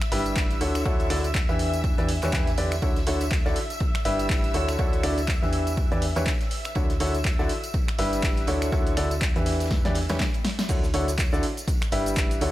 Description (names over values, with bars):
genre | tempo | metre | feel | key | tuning
piano house | 122 BPM | 4/4 | swing 58% on 16ths | D major | A4 = 440 Hz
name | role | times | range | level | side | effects
string machine, violins | sustained chords | 0.0-10.7 s | E5 to E6 | -36 LUFS | left 1 dB | ensemble chorus, sidechain pumping
loose indie drum kit | drums | 0.0-12.5 s | ride cymbal, snare drum | -43 LUFS | right 2 dB | none
punchy analog drum machine | drums | 0.0-12.5 s | crash cymbal, finger snaps, handclaps, hi-hat, shaker, snare drum | -31 LUFS | equal | none
tambourine | percussion | 0.0-12.4 s | none | -43 LUFS | right 1 dB | none
clear grand piano | riff | 0.1-12.5 s | D3 to E5 | -27 LUFS | equal | sidechain pumping
solid FM bass | bass | 0.1-12.5 s | G1 to E2 | -29 LUFS | equal | sidechain pumping
electronic kick drum | drums | 0.4-12.3 s | none | -26 LUFS | equal | none
room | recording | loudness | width
small room ambience | none | -22 LUFS | side -15 dB against mid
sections
0.0-10.7 A section; 10.7-12.5 B section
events
drum fill 9.7-10.7; drop 10.7-12.5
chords
0.0 G6; 0.6 Dmaj9; 1.6 Em7; 2.8 Dmaj9; 3.8 G6; 4.5 Dmaj9; 5.5 Em7; 6.8 Dmaj9; 7.7 G6; 8.5 Dmaj9; 9.5 Em7; 10.7 Dmaj9; 11.7 G6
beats
0.36 | 0.86 1.35 1.84 2.33 | 2.82 3.31 3.81 4.30 | 4.79 5.28 5.77 6.27 | 6.76 7.25 7.74 8.23 | 8.72 9.22 9.71 10.20 | 10.69 11.18 11.68 12.17